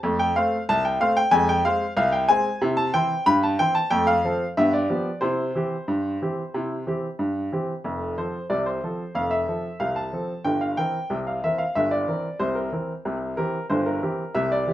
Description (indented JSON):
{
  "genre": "ragtime piano",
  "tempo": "92 BPM",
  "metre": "2/4",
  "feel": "straight",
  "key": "C major, F major from 7.9 s",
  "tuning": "A4 = 439 Hz",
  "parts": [
    { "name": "clear baby grand piano", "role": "solo", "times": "0.0-14.7 s", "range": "F1 to B5", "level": "-21 LUFS", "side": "equal", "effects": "none" }
  ],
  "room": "moderate club reverb, RT60 0.7 s",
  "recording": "minimal, uncompressed stereo recording",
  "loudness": "-21 LUFS",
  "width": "side -13 dB against mid",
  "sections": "0.0-7.9 A section; 7.9-14.7 B section",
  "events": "none",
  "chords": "0.0 F; 1.3 Fm; 2.6 C; 3.9 F; 4.6 G7; 5.2 C; 7.9 F; 10.5 C7/G; 13.1 C",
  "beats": "| 0.03 0.68 | 1.33 1.98 | 2.62 3.27 | 3.92 4.57 | 5.23 5.89 | 6.54 7.20 | 7.86 8.51 | 9.16 9.81 | 10.46 11.12 | 11.77 12.42 | 13.07 13.72 | 14.37"
}